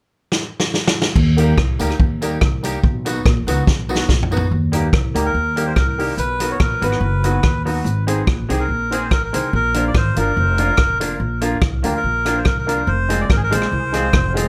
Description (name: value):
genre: ska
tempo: 143 BPM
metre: 4/4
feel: swing 54% on 8ths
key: Eb major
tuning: A4 = 439 Hz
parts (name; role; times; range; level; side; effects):
- vintage drum kit; drums; 0.3-14.5 s; crash cymbal, hi-hat, kick drum, rim click, snare drum, toms; -21 LUFS; equal; none
- upright bass; bass; 1.2-14.5 s; F1 to Eb2; -23 LUFS; equal; none
- twangy electric guitar; accompaniment; 1.4-14.5 s; F3 to Ab4; -31 LUFS; equal; tube saturation
- warm upright piano; stabs; 1.4-14.5 s; Ab3 to C5; -27 LUFS; equal; tape echo
- tambourine; percussion; 1.4-4.4 s; none; -39 LUFS; equal; none
- melodica; melody; 5.2-14.3 s; G4 to D5; -24 LUFS; equal; tape echo
room: moderate studio reverb, RT60 0.6 s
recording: none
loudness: -18 LUFS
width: mono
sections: 0.0-1.2 A section; 1.2-4.5 B section; 4.5-14.5 C section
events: drum fill 0.3-1.2, 3.7-4.5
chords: 0.0 N.C.; 1.2 Eb; 2.8 B; 4.5 Eb; 6.2 B; 7.9 Ab; 9.5 Bb; 12.9 Fm